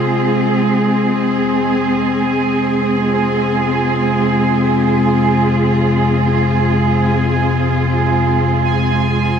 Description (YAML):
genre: dark ambient drone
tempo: free time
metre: none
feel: none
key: F minor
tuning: A4 = 439 Hz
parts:
  - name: warm studio cello section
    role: sustained chords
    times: 0.0-9.4 s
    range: Ab3 to Ab4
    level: -14 LUFS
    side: equal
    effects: shimmer reverb
  - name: deep rumbling drone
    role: drone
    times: 0.0-9.4 s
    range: F2 to C3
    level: -19 LUFS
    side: left 3 dB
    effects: built-in reverb
  - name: bubbling stepped-filter texture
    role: texture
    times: 1.2-9.4 s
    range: Ab5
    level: -23 LUFS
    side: right 7 dB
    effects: chorus, built-in reverb, shimmer reverb
room: wet cathedral reverb, RT60 5.5 s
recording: none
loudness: -13 LUFS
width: side -7 dB against mid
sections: 0.0-1.1 A section; 1.1-9.4 B section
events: none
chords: 0.0 Fm